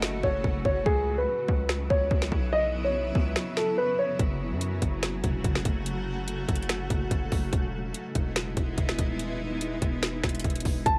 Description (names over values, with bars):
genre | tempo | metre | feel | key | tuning
hip hop, trap | 144 BPM | 4/4 | half-time | F# dorian | A4 = 440 Hz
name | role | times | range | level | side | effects
dark concert grand piano | melody | 0.0-4.2, 10.9-11.0 s | G#4 to A5 | -30 LUFS | equal | none
granular cloud pad | sustained chords | 0.0-10.8 s | C#3 to F#4 | -36 LUFS | equal | built-in reverb, cassette tape
distorted 808-style bass | bass | 0.0-11.0 s | D#1 to F#2 | -34 LUFS | equal | distortion
trap drum kit | drums | 0.0-11.0 s | finger snaps, hi-hat, kick drum, snare drum | -30 LUFS | equal | none
room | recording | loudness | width
light reverb | home recording on cassette | -28 LUFS | mono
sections
0.0-10.9 A section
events
break 0.0-4.2, 4.2-10.9; kick muted 3.4-4.2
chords
0.0 F#m; 0.9 C#m7; 4.2 F#m; 7.5 Emaj7